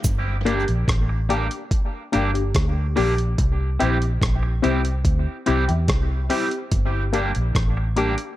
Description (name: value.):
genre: dub reggae.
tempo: 72 BPM.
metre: 4/4.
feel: straight.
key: G dorian.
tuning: A4 = 438 Hz.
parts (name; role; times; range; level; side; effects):
dusty soul sampler-style drum kit; drums; 0.0-8.4 s; hi-hat, kick drum, rim click; -23 LUFS; equal; none.
vintage muted fingered electric bass; bass; 0.1-8.1 s; G1 to E2; -22 LUFS; equal; none.
electric guitar at the edge of break-up; accompaniment; 0.5-8.1 s; G3 to G4; -28 LUFS; right 4 dB; tape echo.
filtered dub chord stab; stabs; 0.5-8.2 s; Bb3 to G4; -26 LUFS; left 4 dB; phaser, tape echo.
room: light reverb, digital ambience.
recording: none.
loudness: -19 LUFS.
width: side -14 dB against mid.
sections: 0.0-8.4 A section.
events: none.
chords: 0.0 Gm; 3.4 C; 6.7 Gm.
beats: | 0.05 0.88 1.72 2.55 | 3.38 4.22 5.05 5.88 | 6.72 7.55.